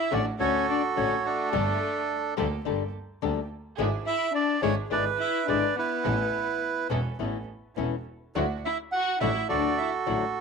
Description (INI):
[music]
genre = tango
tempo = 106 BPM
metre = 4/4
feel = rubato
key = D major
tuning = A4 = 440 Hz
[part]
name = bandoneon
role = melody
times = 0.0-10.4 s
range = D4 to F#5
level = -27 LUFS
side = right 5 dB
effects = none
[part]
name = warm chamber violin section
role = second line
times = 0.0-9.9 s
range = A3 to F#4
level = -32 LUFS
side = left 14 dB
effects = none
[part]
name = flamenco guitar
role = accompaniment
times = 0.1-10.2 s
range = D3 to A4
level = -30 LUFS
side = left 15 dB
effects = none
[part]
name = rich chamber string section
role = stabs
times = 0.1-10.3 s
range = Bb3 to A4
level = -37 LUFS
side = right 11 dB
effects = none
[part]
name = clear double bass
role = bass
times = 0.1-10.3 s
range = E1 to D2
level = -32 LUFS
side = right 1 dB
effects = none
[sound]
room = moderate spring reverb, RT60 1.6 s, small room ambience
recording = 1960s-style stereo with parts hard left and right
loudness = -25 LUFS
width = side -5 dB against mid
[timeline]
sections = 0.0-10.4 A section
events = none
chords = 0.0 Dmaj7; 1.5 Gmadd9; 3.8 E7/G#; 6.1 Aadd9; 8.4 Dadd9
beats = 0.40 0.97 | 1.53 2.10 2.66 3.23 | 3.79 4.35 4.91 5.48 | 6.05 6.62 7.20 7.77 | 8.35 8.92 9.50 10.07